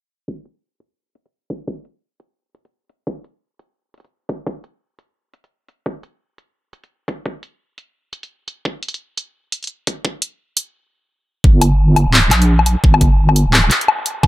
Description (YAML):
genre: half-time drum and bass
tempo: 172 BPM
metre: 4/4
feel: swing 59% on 16ths, half-time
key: G minor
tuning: A4 = 440 Hz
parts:
  - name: electronic kick drum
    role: drums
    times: 0.3-14.3 s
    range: none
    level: -15 LUFS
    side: equal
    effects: overdrive, high-pass filter on kick, high-pass filter on room
  - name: drum and bass drum kit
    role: drums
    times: 0.5-14.3 s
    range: handclaps, hi-hat, woodblock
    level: -16 LUFS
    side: left 2 dB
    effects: overdrive, low-pass filter on hats, low-pass filter on perc, low-pass filter on snare, low-pass filter on room, tape echo
  - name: deep soft wobble bass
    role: bass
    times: 11.4-14.3 s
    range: D1 to Bb1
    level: -13 LUFS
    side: equal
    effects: chorus
room: light reverb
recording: echo-heavy mix, low-pass filter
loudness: -13 LUFS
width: side -16 dB against mid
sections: 0.3-11.4 A section; 11.4-14.3 B section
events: filter sweep on drum 0.3-11.4; filter sweep 0.3-11.4; stop 10.7-11.4; drop 11.4-14.3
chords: none